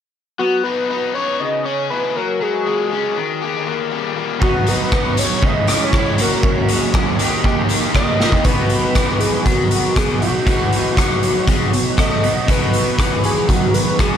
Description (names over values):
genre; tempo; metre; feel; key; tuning
indie rock; 119 BPM; 4/4; straight; B major; A4 = 441 Hz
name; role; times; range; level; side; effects
fat analog lead; melody; 0.4-14.2 s; F#4 to D#5; -22 LUFS; equal; dub echo
raw garage guitar; riff; 0.4-14.2 s; B2 to C#5; -22 LUFS; left 7 dB; overdrive, dub echo
overdriven electric guitar; riff; 4.4-14.2 s; F#2 to G4; -21 LUFS; right 6 dB; analog chorus, dub echo
raw garage drum kit; drums; 4.4-14.1 s; hi-hat, kick drum, rim click, snare drum; -17 LUFS; equal; none
room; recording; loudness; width
light reverb, small room ambience; echo-heavy mix; -15 LUFS; side -8 dB against mid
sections
0.4-8.4 A section; 8.4-14.2 B section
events
drum fill 8.2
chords
0.4 Badd9; 1.4 C#m; 2.1 F#sus2; 3.2 D#; 4.4 Badd9; 5.4 C#m; 6.2 F#add9; 7.2 D#; 8.4 B